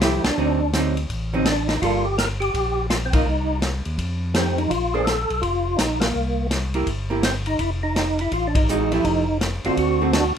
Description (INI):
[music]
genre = soul jazz organ trio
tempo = 166 BPM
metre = 4/4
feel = swing 64% on 8ths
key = F major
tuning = A4 = 440 Hz
[part]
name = percussive tonewheel organ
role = melody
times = 0.0-10.3 s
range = Bb3 to Bb4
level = -23 LUFS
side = equal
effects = slow rotary speaker, chorus vibrato
[part]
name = archtop guitar, miked and amplified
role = accompaniment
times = 0.0-10.1 s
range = D3 to C5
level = -23 LUFS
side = right 3 dB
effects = none
[part]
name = tonewheel organ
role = bass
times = 0.0-10.3 s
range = F1 to F2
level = -25 LUFS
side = left 1 dB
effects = overdrive, slow rotary speaker
[part]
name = vintage drum kit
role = drums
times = 0.0-10.2 s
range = hi-hat, kick drum, ride cymbal, snare drum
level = -25 LUFS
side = equal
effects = none
[sound]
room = light reverb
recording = minimal, uncompressed stereo recording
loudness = -19 LUFS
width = side -8 dB against mid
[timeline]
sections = 0.0-10.4 A section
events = band accent 0.2, 3.1, 6.0, 8.5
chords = 0.4 D7b9; 1.8 Gm9; 3.3 Cm; 4.0 F9; 4.7 Bbmaj7(no3); 6.2 C7; 7.6 Fmaj9; 9.8 D7